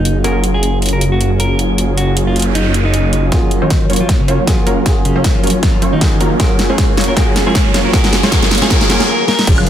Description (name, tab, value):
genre	future bass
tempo	156 BPM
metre	4/4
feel	swing 56% on 16ths, half-time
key	F# major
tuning	A4 = 441 Hz
part	clean electric guitar	melody	0.0-9.7 s	C#3 to A#4	-20 LUFS	equal	sidechain pumping, low-pass filter, digital delay
part	felt-muted upright piano	accompaniment	0.0-9.5 s	F#3 to G#4	-24 LUFS	left 1 dB	sidechain pumping, tape echo
part	supersaw stab	riff	0.0-9.7 s	F#3 to C#5	-17 LUFS	right 1 dB	sidechain pumping, low-pass filter
part	wide detuned saw bass	bass	0.0-3.3, 9.5-9.7 s	F#1	-15 LUFS	equal	chorus, tube saturation, sidechain pumping
part	dubstep drum kit	drums	0.1-9.7 s	crash cymbal, hi-hat, snare drum, woodblock	-18 LUFS	equal	small room reverb, soft clipping on snare
part	noise sweep, riser and impact	sound effects	2.2-9.7 s	none	-23 LUFS	right 2 dB	none
part	electronic kick drum	drums	3.3-9.6 s	none	-14 LUFS	equal	small room reverb
part	wide unison pluck	arpeggios	9.5-9.7 s	G#4	-28 LUFS	left 3 dB	none
room	light reverb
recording	dense, heavily limited modern master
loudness	-11 LUFS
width	side -10 dB against mid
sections	0.0-3.3 A section; 3.3-9.5 B section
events	filter sweep on supersaw synth 0.0-3.3, 3.3-9.5; noise sweep 2.2-3.3; build-up 3.3-9.5; drum fill 3.3-9.1, 9.3; riser 3.3-9.1; filter sweep on clean electric guitar 3.3-9.5; impact 9.5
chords	0.0 F#maj9